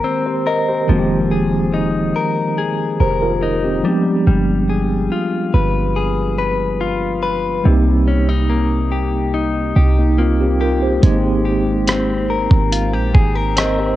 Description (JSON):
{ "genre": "contemporary R&B", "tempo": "71 BPM", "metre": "4/4", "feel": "straight", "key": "F minor", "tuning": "A4 = 439 Hz", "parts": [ { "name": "mellow tine electric piano", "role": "accompaniment", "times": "0.0-14.0 s", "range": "Eb3 to Eb5", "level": "-19 LUFS", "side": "right 1 dB", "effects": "medium stereo tremolo, cassette tape" }, { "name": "direct-recorded clean electric guitar", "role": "arpeggios", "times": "0.0-14.0 s", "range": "C3 to B4", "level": "-20 LUFS", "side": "left 5 dB", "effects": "cassette tape" }, { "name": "warm 808-style bass", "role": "bass", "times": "0.9-14.0 s", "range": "F1 to C2", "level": "-18 LUFS", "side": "right 1 dB", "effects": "none" }, { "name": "dusty soul sampler-style drum kit", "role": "drums", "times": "11.0-13.8 s", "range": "hi-hat, kick drum, rim click", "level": "-15 LUFS", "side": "right 1 dB", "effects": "cassette tape" } ], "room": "little or no reverb", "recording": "home recording on cassette", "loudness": "-14 LUFS", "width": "side -14 dB against mid", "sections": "0.0-14.0 A section", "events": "none", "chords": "0.0 Abmaj9; 0.9 Fm11; 3.8 G7b9; 7.7 Cm7; 11.0 Abmaj9" }